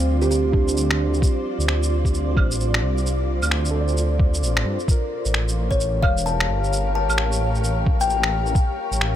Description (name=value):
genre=future garage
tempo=131 BPM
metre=4/4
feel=swing 61% on 16ths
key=D minor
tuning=A4 = 440 Hz
part: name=tine electric piano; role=accompaniment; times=0.0-9.2 s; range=C4 to D5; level=-30 LUFS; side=right 2 dB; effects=sidechain pumping, ping-pong delay
part: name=granular cloud pad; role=sustained chords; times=0.0-9.2 s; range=F4 to F5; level=-28 LUFS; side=equal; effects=built-in reverb, vintage 12-bit sampler grit, sidechain pumping
part: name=swelling detuned saw bass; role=bass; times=0.0-9.2 s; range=E1 to G2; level=-22 LUFS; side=equal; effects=tube saturation, sidechain pumping
part: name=kalimba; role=melody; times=0.2-0.4, 5.7-8.6 s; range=G4 to A5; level=-26 LUFS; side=left 2 dB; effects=tape echo
part: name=electronic shaker, finger snaps and claves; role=drums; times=0.2-9.1 s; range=none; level=-26 LUFS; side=right 1 dB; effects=none
part: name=electronic kick drum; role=drums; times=0.5-8.7 s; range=none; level=-20 LUFS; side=equal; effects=none
room=little or no reverb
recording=none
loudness=-18 LUFS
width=side -11 dB against mid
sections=0.0-9.2 A section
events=none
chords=0.0 Dm7; 4.9 A7b9b13